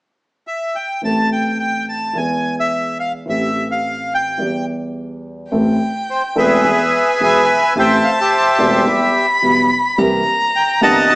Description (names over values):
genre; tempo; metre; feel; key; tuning
tango; 107 BPM; 4/4; rubato; A minor; A4 = 441 Hz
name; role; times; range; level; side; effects
bandoneon; melody; 0.5-11.2 s; G4 to A5; -15 LUFS; equal; none
dark concert grand piano; accompaniment; 1.0-11.2 s; E1 to A4; -19 LUFS; equal; none
upright bass; bass; 1.0-11.2 s; E1 to E2; -33 LUFS; equal; none
warm violin; second line; 5.5-11.2 s; G5 to B5; -17 LUFS; left 1 dB; none
room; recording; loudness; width
wet stone room reverb, RT60 1.2 s; band playing live in one room, small speaker sound; -13 LUFS; side -23 dB against mid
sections
0.0-1.0 A section; 1.0-5.5 B section; 5.5-11.2 C section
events
none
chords
0.0 N.C.; 1.0 Am; 2.2 E; 3.3 Am7; 4.4 Em; 5.5 Am; 6.6 E; 7.8 Am7; 8.9 Em; 10.0 C7